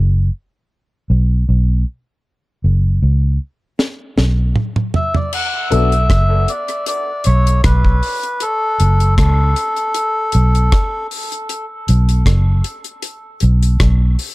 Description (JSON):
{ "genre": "dub reggae", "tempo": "78 BPM", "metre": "4/4", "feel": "straight", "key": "B minor", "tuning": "A4 = 439 Hz", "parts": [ { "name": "vintage muted fingered electric bass", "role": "bass", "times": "0.0-14.2 s", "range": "F#1 to C#2", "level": "-12 LUFS", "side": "equal", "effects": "none" }, { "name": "deep reggae drum kit", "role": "drums", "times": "3.8-14.3 s", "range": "crash cymbal, hi-hat, kick drum, rim click, snare drum, toms", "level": "-18 LUFS", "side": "equal", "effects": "none" }, { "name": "melodica", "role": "melody", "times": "5.0-11.1 s", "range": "A4 to F#5", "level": "-20 LUFS", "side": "equal", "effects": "dub echo" }, { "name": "warm upright piano", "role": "stabs", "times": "5.7-5.9 s", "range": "B3 to A4", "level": "-25 LUFS", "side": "left 7 dB", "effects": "low-pass filter, dub echo" } ], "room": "light reverb, small room ambience", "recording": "dark, warm production", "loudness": "-13 LUFS", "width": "side -20 dB against mid", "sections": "0.0-5.3 A section; 5.3-14.3 B section", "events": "break 0.0-5.3; drum fill 3.8-5.3", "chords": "0.0 B5; 2.2 F#5; 5.3 Bm; 8.4 F#m; 11.5 B5", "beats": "0.70 1.47 | 2.24 3.02 3.79 4.56 | 5.33 6.10 6.87 7.64 | 8.41 9.18 9.95 10.72 | 11.49 12.26 13.03 13.80" }